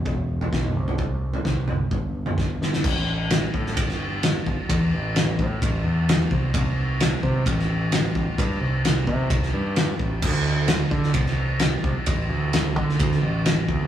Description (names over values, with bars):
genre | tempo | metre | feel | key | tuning
quiet-loud alternative rock | 130 BPM | 4/4 | straight | A minor | A4 = 440 Hz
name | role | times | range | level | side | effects
growling picked electric bass | bass | 0.0-13.9 s | E1 to D3 | -24 LUFS | right 1 dB | overdrive
loose indie drum kit | drums | 0.1-13.8 s | crash cymbal, kick drum, ride cymbal, snare drum, toms | -23 LUFS | equal | none
room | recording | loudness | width
moderate stone room reverb, RT60 1.5 s | rough rehearsal-room recording, tube saturation, small room ambience | -20 LUFS | side -10 dB against mid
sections
0.0-2.9 A section; 2.9-13.9 B section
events
drum fill 2.4-2.9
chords
none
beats
0.06 0.53 | 0.99 1.46 1.92 2.39 | 2.85 3.31 3.78 4.24 | 4.70 5.16 5.62 6.08 | 6.54 7.00 7.46 7.92 | 8.38 8.84 9.30 9.77 | 10.23 10.69 11.15 11.61 | 12.07 12.53 12.99 13.45